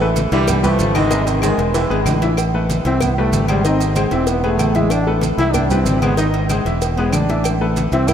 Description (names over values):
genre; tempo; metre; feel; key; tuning
latin, salsa; 189 BPM; 4/4; straight; A harmonic minor; A4 = 440 Hz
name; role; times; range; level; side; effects
warm baritone saxophone; second line; 0.0-2.2 s; D3 to E3; -26 LUFS; right 2 dB; none
bright baby grand piano; accompaniment; 0.0-8.1 s; B#2 to E5; -20 LUFS; left 2 dB; none
fingered electric bass; bass; 0.0-8.1 s; E1 to C2; -19 LUFS; equal; none
congas; percussion; 0.0-8.1 s; none; -26 LUFS; equal; none
cowbell; percussion; 0.2-8.1 s; none; -28 LUFS; left 4 dB; none
maracas; percussion; 0.2-8.1 s; none; -33 LUFS; right 9 dB; none
timbales and agogo bells; percussion; 0.2-8.1 s; none; -27 LUFS; right 6 dB; none
warm trombone section; melody; 0.3-2.1 s; B#2 to A3; -24 LUFS; equal; analog delay
claves; percussion; 0.5-8.1 s; none; -36 LUFS; left 7 dB; none
bright trombone; melody; 2.9-8.1 s; G3 to E4; -21 LUFS; equal; none
room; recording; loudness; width
wet cathedral reverb, RT60 5.1 s; dreamy mix soaked in reverb; -14 LUFS; side -9 dB against mid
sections
0.0-2.4 A section; 2.4-8.1 B section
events
drum fill 1.9-2.4; trombone solo 2.4-8.1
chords
0.5 Cmaj7; 1.1 G#; 1.7 E7; 2.4 Amadd9; 3.0 Cmaj7; 3.6 G#; 4.3 E; 4.9 Amadd9; 5.5 Cmaj7; 6.2 G#; 6.8 E7; 7.4 Amadd9